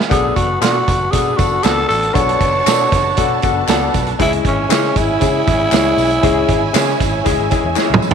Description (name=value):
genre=uptempo 1960s-style soul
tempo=117 BPM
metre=4/4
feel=straight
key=unclear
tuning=A4 = 439 Hz
part: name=warm studio violin section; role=second line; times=0.0-8.1 s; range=D4 to A5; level=-23 LUFS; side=right 9 dB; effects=none
part: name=clear concert grand piano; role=accompaniment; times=0.0-8.1 s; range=G#3 to A4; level=-19 LUFS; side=left 12 dB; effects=none
part: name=tonewheel organ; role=sustained chords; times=0.0-8.1 s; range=B4 to E6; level=-28 LUFS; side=equal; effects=chorus vibrato, stopped rotary speaker
part: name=vintage drum kit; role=drums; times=0.0-8.1 s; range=hi-hat, kick drum, snare drum, toms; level=-18 LUFS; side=right 4 dB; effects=none
part: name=growling tenor saxophone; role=melody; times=0.1-7.8 s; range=C#4 to C#5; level=-17 LUFS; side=right 1 dB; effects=none
part: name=vintage muted picked electric bass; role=bass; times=0.1-8.1 s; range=F#1 to C#3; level=-23 LUFS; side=equal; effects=none
part: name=tambourine and handclaps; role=percussion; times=0.1-8.1 s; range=none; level=-27 LUFS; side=left 3 dB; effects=none
part: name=electric guitar through a small old amp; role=stabs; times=0.6-7.9 s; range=B3 to D5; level=-27 LUFS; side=right 10 dB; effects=none
room=moderate echo chamber reverb, RT60 2.2 s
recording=1960s-style stereo with parts hard left and right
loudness=-12 LUFS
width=side -7 dB against mid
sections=0.0-8.1 A section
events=drum fill 7.8-8.1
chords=0.1 Bm7; 4.2 C#m